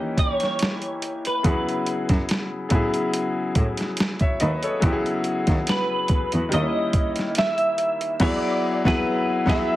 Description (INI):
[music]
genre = R&B, neo-soul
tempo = 71 BPM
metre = 4/4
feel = swing 54% on 16ths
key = E major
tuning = A4 = 441 Hz
[part]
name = bright concert grand piano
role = accompaniment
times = 0.0-9.8 s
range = C#3 to E5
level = -25 LUFS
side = left 2 dB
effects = none
[part]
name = clean electric guitar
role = melody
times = 0.2-9.8 s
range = B4 to E5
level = -25 LUFS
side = right 1 dB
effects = ensemble chorus, slapback echo
[part]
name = boom bap sampler-style drum kit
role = drums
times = 0.2-9.7 s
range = crash cymbal, hi-hat, kick drum, snare drum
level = -24 LUFS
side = equal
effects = overdrive
[part]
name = rich cello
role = bass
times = 1.5-9.6 s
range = D#2 to A2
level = -25 LUFS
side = equal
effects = none
[sound]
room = light reverb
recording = heavily compressed radio sound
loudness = -20 LUFS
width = side -15 dB against mid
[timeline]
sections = 0.0-9.8 A section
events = band accent 8.2-9.8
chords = 0.0 D#7b9; 1.4 Eadd9; 2.7 Amaj9; 4.8 E; 6.5 D#7b9; 8.2 Eadd9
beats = 0.60 | 1.44 2.29 3.13 3.98 | 4.82 5.67 6.51 7.36 | 8.20 9.05